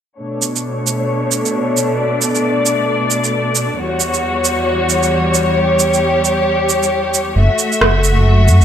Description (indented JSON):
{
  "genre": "future garage",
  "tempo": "134 BPM",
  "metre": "4/4",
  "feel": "swing 60% on 16ths",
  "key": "unclear",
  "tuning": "A4 = 438 Hz",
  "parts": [
    { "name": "warm studio string section", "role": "sustained chords", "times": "0.2-8.6 s", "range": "E2 to E5", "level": "-15 LUFS", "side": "left 1 dB", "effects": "vintage 12-bit sampler grit, low-pass filter" },
    { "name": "electronic shaker and rim click", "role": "drums", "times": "0.4-8.6 s", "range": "none", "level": "-17 LUFS", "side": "right 4 dB", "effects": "gated reverb" },
    { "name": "dark detuned saw bass", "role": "bass", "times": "7.4-8.6 s", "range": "F#1 to F#2", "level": "-10 LUFS", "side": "equal", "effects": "none" }
  ],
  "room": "moderate lush hall reverb, RT60 2.1 s",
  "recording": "bright 1980s-style digital production",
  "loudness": "-13 LUFS",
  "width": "side -9 dB against mid",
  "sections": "0.2-8.6 A section",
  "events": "filter sweep on string section 0.2-8.6",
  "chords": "0.2 Bm9; 3.8 Em69; 7.4 F#m7"
}